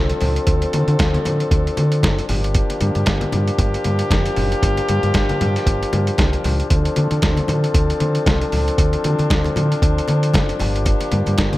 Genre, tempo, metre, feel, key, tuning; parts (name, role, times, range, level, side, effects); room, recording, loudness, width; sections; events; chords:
disco; 116 BPM; 4/4; swing 56% on 16ths; D minor; A4 = 445 Hz
warm French horn section; sustained chords; 0.0-11.6 s; F3 to A4; -22 LUFS; left 2 dB
deep dub fingered electric bass; bass; 0.0-11.5 s; F1 to D3; -20 LUFS; equal
lo-fi sampler-style drum kit; drums; 0.1-11.6 s; hi-hat, kick drum, snare drum; -20 LUFS; equal; overdrive
congas; percussion; 0.1-11.6 s; -26 LUFS; left 2 dB
digital ambience; -16 LUFS; side -17 dB against mid
0.0-11.6 A section
0.0 Dm7; 2.3 Gm7; 6.7 Dm7; 10.6 Gm7